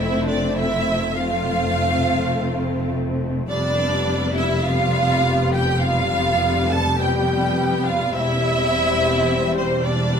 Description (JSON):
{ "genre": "classical, slow romantic movement for string orchestra", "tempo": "52 BPM", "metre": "4/4", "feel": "rubato", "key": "unclear", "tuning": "A4 = 440 Hz", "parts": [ { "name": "rich symphonic violin section", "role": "melody", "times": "0.0-10.2 s", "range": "C4 to A4", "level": "-29 LUFS", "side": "left 2 dB", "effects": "none" }, { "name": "warm studio violin section", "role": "second line", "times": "0.0-10.2 s", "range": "C5 to A5", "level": "-22 LUFS", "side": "right 2 dB", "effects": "none" }, { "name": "dark symphonic viola section", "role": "accompaniment", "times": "0.0-10.2 s", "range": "G3 to C4", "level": "-24 LUFS", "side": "left 4 dB", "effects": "none" }, { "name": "warm symphonic cello section", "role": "bass", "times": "0.0-10.2 s", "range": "E2 to F2", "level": "-26 LUFS", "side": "equal", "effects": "none" }, { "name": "warm symphonic double bass section", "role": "bass", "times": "0.0-10.2 s", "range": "E1 to F1", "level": "-24 LUFS", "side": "right 1 dB", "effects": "none" } ], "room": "light reverb", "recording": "none", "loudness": "-18 LUFS", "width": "side -7 dB against mid", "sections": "0.0-10.2 A section", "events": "none", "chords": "0.0 F; 3.5 G7/F; 8.1 C/E" }